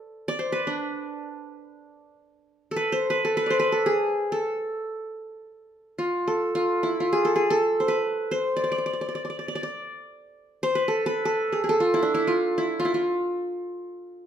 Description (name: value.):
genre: Turkish makam ensemble.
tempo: free time.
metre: none.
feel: none.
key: D makam nikriz.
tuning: A4 = 440 Hz.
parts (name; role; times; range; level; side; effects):
qanun; solo; 0.0-14.3 s; D4 to D5; -23 LUFS; equal; none.
room: moderate large studio reverb, RT60 0.9 s.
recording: band playing live in one room.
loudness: -23 LUFS.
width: side -9 dB against mid.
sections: 0.0-2.4 A section; 2.4-14.3 A section.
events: none.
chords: none.